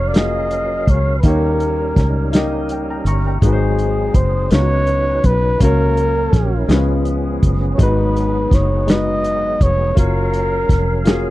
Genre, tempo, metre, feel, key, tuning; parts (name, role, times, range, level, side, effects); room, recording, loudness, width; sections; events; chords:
slow gospel; 55 BPM (dotted quarters); 6/8; straight; F# major; A4 = 437 Hz
breathy trumpet; melody; 0.0-11.0 s; G#4 to D#5; -20 LUFS; equal
warm grand piano; accompaniment; 0.0-11.3 s; G#2 to C#6; -22 LUFS; left 2 dB
tonewheel organ; sustained chords; 0.0-11.3 s; D#3 to E#5; -25 LUFS; right 2 dB; slow rotary speaker, overdrive, chorus vibrato
fingered electric bass; bass; 0.0-11.3 s; E#1 to D#2; -18 LUFS; equal
warm soul drum kit; drums; 0.1-11.2 s; hi-hat, kick drum, snare drum; -15 LUFS; equal
little or no reverb; dry, close 1970s-style studio recording; -14 LUFS; side -16 dB against mid
0.0-11.3 A section
0.0 F#maj7; 1.2 D#7; 3.4 G#7; 4.5 C#9sus4; 5.6 F#/C#; 6.7 C#7; 7.8 G#m7; 10.0 F#maj7